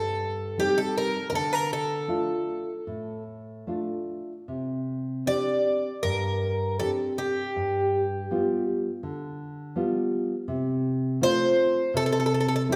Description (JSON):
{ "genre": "fado-style ballad", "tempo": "80 BPM", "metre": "4/4", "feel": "rubato", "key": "F major", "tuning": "A4 = 441 Hz", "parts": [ { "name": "picked twelve-string acoustic guitar", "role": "melody", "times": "0.0-12.8 s", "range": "G4 to D5", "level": "-28 LUFS", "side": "equal", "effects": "none" }, { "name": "nylon-string guitar", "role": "accompaniment", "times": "0.0-12.8 s", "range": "G2 to G4", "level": "-30 LUFS", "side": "equal", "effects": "none" } ], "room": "wet concert hall reverb, RT60 1.8 s", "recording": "none", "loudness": "-27 LUFS", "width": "mono", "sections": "0.0-12.8 A section", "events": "none", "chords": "0.0 Cm; 1.3 Dm; 4.5 Csus2; 7.5 G7; 10.5 F/C; 11.9 N.C." }